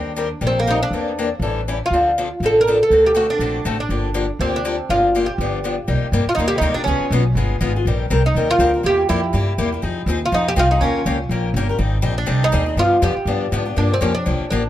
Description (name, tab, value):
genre	acoustic string swing (jazz manouche)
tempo	243 BPM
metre	4/4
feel	swing 57% on 8ths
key	G minor, C minor from 5.9 s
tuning	A4 = 440 Hz
part	oud	melody	0.0-14.7 s	Bb3 to Bb4	-19 LUFS	right 1 dB	tape echo
part	picked acoustic archtop guitar	accompaniment	0.0-14.6 s	C3 to Bb4	-23 LUFS	left 5 dB	none
part	upright bass	bass	0.0-14.7 s	G1 to Ab2	-21 LUFS	equal	none
room	little or no reverb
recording	close, detailed microphones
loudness	-16 LUFS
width	side -12 dB against mid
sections	0.0-5.9 A section; 5.9-13.8 B section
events	none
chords	0.0 Eb6; 0.9 Em7b5; 1.4 A7; 1.9 Dm7; 2.9 D7; 3.9 Gm7; 5.4 G7; 5.9 Cm7; 6.9 Db7; 7.9 Eb6; 8.8 C7; 9.8 Fm7; 10.8 Eb7; 11.8 Abmaj7; 12.8 G7; 13.8 Gm11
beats	0.17 0.42 0.67 | 0.92 1.17 1.41 1.66 | 1.91 2.16 2.41 2.66 | 2.90 3.15 3.40 3.65 | 3.90 4.15 4.39 4.64 | 4.89 5.14 5.39 5.63 | 5.88 6.13 6.38 6.62 | 6.87 7.12 7.37 7.61 | 7.86 8.11 8.35 8.60 | 8.85 9.09 9.34 9.58 | 9.83 10.08 10.32 10.57 | 10.81 11.06 11.31 11.55 | 11.80 12.05 12.29 12.54 | 12.78 13.03 13.28 13.52 | 13.77 14.02 14.26 14.51